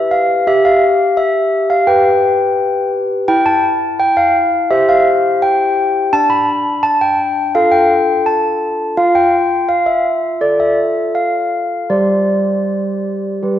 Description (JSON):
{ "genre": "classical, tune for handbells", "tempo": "84 BPM", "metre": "4/4", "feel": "straight", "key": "C major from 3.3 s", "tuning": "A4 = 440 Hz", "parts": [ { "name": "handbells", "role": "solo", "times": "0.0-13.6 s", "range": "G3 to B5", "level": "-12 LUFS", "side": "equal", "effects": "none" } ], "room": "wet concert hall reverb, RT60 2.2 s", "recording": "dark, warm production", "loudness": "-12 LUFS", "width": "side -11 dB against mid", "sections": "0.0-13.6 A section", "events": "none", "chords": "0.5 G7; 3.3 C/E; 6.1 Dm; 9.0 Fmaj9; 11.9 Gsus4", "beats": "| 0.49 1.20 1.90 2.60 | 3.30 4.00 4.71 5.42 | 6.13 6.84 7.55 8.27 | 8.98 9.70 10.42 11.16 | 11.91 12.68 13.44" }